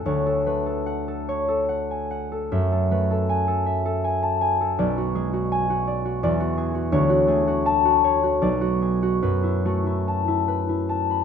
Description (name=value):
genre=classical, solo harp piece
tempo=71-87 BPM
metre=3/4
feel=rubato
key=F# minor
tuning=A4 = 440 Hz
part: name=concert harp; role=solo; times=0.0-11.2 s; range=B1 to B5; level=-20 LUFS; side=left 1 dB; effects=none
room=light reverb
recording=minimal, uncompressed stereo recording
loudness=-20 LUFS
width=side -7 dB against mid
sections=0.0-11.2 A section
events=none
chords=0.0 Dmaj7; 2.5 F#m9; 4.8 Bm6; 6.2 E9; 6.9 Dmaj7; 8.4 Bm6; 9.2 F#m7